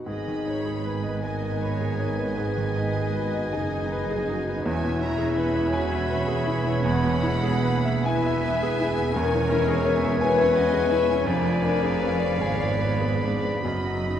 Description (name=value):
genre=classical, romantic movement for piano and orchestra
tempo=53 BPM (dotted quarters)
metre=12/8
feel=uneven beats, rubato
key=G# minor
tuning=A4 = 439 Hz
part: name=bright grand piano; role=melody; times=0.0-14.2 s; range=E2 to G#5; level=-28 LUFS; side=left 1 dB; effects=none
part: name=mellow French horn section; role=sustained chords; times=0.0-14.2 s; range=B3 to B4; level=-28 LUFS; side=left 3 dB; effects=none
part: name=rich symphonic violin section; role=melody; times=0.1-14.2 s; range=F5 to B5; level=-37 LUFS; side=left 2 dB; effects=none
part: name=bright oboe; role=second line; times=0.1-14.2 s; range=G#5 to Cb6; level=-37 LUFS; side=right 2 dB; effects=none
part: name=mellow clarinet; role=second line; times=0.1-14.2 s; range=B4 to D#5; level=-38 LUFS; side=equal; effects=none
part: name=rich symphonic violin section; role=second line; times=0.1-14.2 s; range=B4 to F#5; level=-36 LUFS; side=left 1 dB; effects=none
part: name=small flute group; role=second line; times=0.1-14.2 s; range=B4 to G#5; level=-36 LUFS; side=left 1 dB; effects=none
part: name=mellow bassoon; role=accompaniment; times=0.1-14.2 s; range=D#3 to F#3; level=-38 LUFS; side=right 4 dB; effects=none
part: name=rich symphonic viola section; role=accompaniment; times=0.1-14.2 s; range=G#3 to D#4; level=-36 LUFS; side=left 1 dB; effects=none
part: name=clear symphonic double bass section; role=bass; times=0.1-14.2 s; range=E1 to G#1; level=-31 LUFS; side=right 4 dB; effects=none
part: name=dark tuba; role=bass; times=0.1-14.2 s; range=E1 to G#1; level=-33 LUFS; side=right 4 dB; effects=none
part: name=warm symphonic cello section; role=bass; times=0.1-14.2 s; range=E2 to G#2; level=-32 LUFS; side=right 4 dB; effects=none
room=wet concert hall reverb, RT60 1.8 s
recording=dark, warm production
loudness=-22 LUFS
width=side -9 dB against mid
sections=0.1-14.2 A section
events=none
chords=0.1 G#m; 4.7 E; 9.2 C#m/E; 11.3 Fdim7; 13.6 B/F#